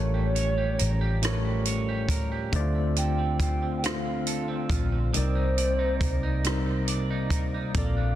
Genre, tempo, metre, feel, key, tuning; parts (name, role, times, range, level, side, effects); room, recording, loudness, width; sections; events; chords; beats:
slow six-eight R&B; 46 BPM (dotted quarters); 6/8; straight; A4 = 440 Hz
hollow clarinet-like synth lead; melody; 0.0-8.2 s; C5 to G5; -32 LUFS; equal; chorus
electric guitar at the edge of break-up; second line; 0.0-8.2 s; D3 to D5; -34 LUFS; right 7 dB; lush chorus
mellow tine electric piano; accompaniment; 0.0-8.2 s; A2 to F5; -30 LUFS; left 2 dB; medium stereo tremolo
percussive tonewheel organ; sustained chords; 0.0-8.2 s; C3 to D5; -39 LUFS; right 2 dB; overdrive, chorus vibrato, slow rotary speaker
vintage muted fingered electric bass; bass; 0.0-8.2 s; A1 to D2; -28 LUFS; equal
compact cocktail drum kit; drums; 0.4-8.0 s; hi-hat, kick drum, rim click; -29 LUFS; equal; vintage 12-bit sampler grit
small room ambience; dense, heavily limited modern master; -24 LUFS; side -12 dB against mid
0.0-8.2 A section
0.0 A7b9; 2.5 Dm7; 5.1 Cm9
1.23 | 2.53 3.83 | 5.14 6.44 | 7.75